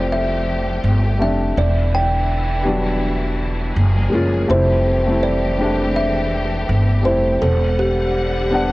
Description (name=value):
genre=lo-fi hip hop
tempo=82 BPM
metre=4/4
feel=swing 60% on 16ths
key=unclear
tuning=A4 = 440 Hz
part: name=kalimba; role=melody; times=0.0-8.7 s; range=G4 to G5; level=-21 LUFS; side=equal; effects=low-pass filter, analog delay
part: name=felt-muted upright piano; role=accompaniment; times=0.0-8.7 s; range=F#3 to F#5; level=-22 LUFS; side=left 1 dB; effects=low-pass filter
part: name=bright studio string section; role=sustained chords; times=0.0-8.7 s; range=D3 to F#5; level=-26 LUFS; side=left 1 dB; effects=low-pass filter
part: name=upright bass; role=bass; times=0.0-8.7 s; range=E1 to G1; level=-19 LUFS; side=equal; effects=none
room=light reverb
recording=worn, warbling old tape, cassette tape, warbly pitch drift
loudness=-16 LUFS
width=side -19 dB against mid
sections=0.0-8.7 A section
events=none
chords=0.0 Fmaj9; 1.6 Em9; 3.8 F#maj9; 4.5 Fmaj9; 7.4 Em9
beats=0.09 0.83 | 1.56 2.29 3.02 3.75 | 4.49 5.22 5.95 6.68 | 7.41 8.14